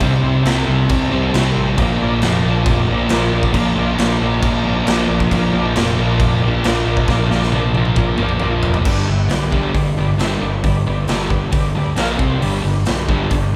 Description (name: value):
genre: garage rock duo or trio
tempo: 136 BPM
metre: 4/4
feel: straight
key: unclear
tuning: A4 = 440 Hz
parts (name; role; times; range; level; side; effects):
- combo organ; sustained chords; 0.0-13.6 s; C4 to F5; -29 LUFS; equal; none
- fuzz guitar; riff; 0.0-13.5 s; G2 to C4; -19 LUFS; equal; distortion
- fuzz fingered electric bass; bass; 0.0-13.5 s; F1 to D2; -25 LUFS; equal; overdrive
- raw garage drum kit; drums; 0.0-13.4 s; crash cymbal, hi-hat, kick drum, snare drum, toms; -22 LUFS; equal; none
room: moderate large studio reverb, RT60 0.8 s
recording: band playing live in one room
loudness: -17 LUFS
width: mono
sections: 0.0-8.9 A section; 8.9-13.6 B section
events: drum fill 7.1-8.9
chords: 0.0 C; 1.8 Bb; 8.9 G; 12.0 Bb5; 12.2 C5; 12.4 G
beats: | 0.01 0.46 0.90 1.34 | 1.78 2.23 2.67 3.11 | 3.55 3.99 4.43 4.88 | 5.32 5.76 6.20 6.64 | 7.09 7.53 7.97 8.41 | 8.86 9.30 9.75 10.19 | 10.64 11.08 11.53 11.98 | 12.42 12.87 13.31